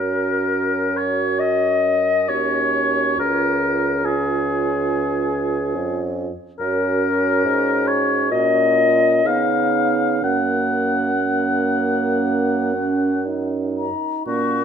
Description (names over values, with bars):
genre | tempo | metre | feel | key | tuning
classical, slow romantic movement for wind quintet | 57-71 BPM | 4/4 | rubato | F# major | A4 = 445 Hz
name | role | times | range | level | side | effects
warm oboe | second line | 0.0-14.6 s | F#4 to F#5 | -20 LUFS | left 3 dB | none
mellow clarinet | accompaniment | 0.0-14.6 s | C#4 to F#4 | -26 LUFS | right 8 dB | none
warm French horn | accompaniment | 0.0-14.6 s | A#3 to D#4 | -26 LUFS | left 1 dB | none
mellow bassoon | bass | 0.0-14.6 s | C#2 to C#3 | -24 LUFS | right 3 dB | none
mellow hollow concert flute | melody | 13.8-14.6 s | A#5 to C#6 | -24 LUFS | left 9 dB | none
room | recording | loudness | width
moderate recital hall reverb, RT60 1.7 s | none | -17 LUFS | side -8 dB against mid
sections
0.0-14.3 A section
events
none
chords
0.0 F#; 3.2 C#; 6.6 F#; 8.3 F#/A#; 9.2 C#9; 10.2 F#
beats
0.51 1.40 2.30 | 3.20 4.06 4.91 5.76 | 6.60 7.45 8.32 9.25 | 10.22 11.23 12.25 13.26 | 14.28